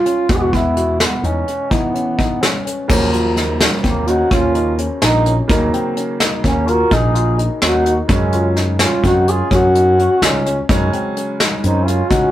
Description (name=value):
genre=progressive instrumental, band music in an uneven meter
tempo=254 BPM (eighths)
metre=11/8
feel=straight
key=Eb minor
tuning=A4 = 440 Hz
part: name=mellow duduk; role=melody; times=0.0-12.3 s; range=Bb3 to Bb4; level=-17 LUFS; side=equal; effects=none
part: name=bright baby grand piano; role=accompaniment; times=0.0-12.3 s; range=B2 to Db4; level=-24 LUFS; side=right 2 dB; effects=none
part: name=barky tine electric piano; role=arpeggios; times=0.0-12.3 s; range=B3 to Gb4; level=-23 LUFS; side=left 4 dB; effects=overdrive
part: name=soft brush drum kit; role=drums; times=0.1-12.2 s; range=crash cymbal, hi-hat, kick drum, snare drum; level=-17 LUFS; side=equal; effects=none
part: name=mellow fretless electric bass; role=bass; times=0.3-12.3 s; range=Bb1 to E3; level=-19 LUFS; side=equal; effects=none
part: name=mellow flugelhorn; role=second line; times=3.8-12.3 s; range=Gb3 to Gb4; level=-25 LUFS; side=right 3 dB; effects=none
room=moderate studio reverb, RT60 0.5 s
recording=rough rehearsal-room recording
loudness=-13 LUFS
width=side -13 dB against mid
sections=0.0-2.9 A section; 2.9-12.3 B section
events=none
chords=0.3 E; 2.9 Ebm7; 8.1 Gbsus2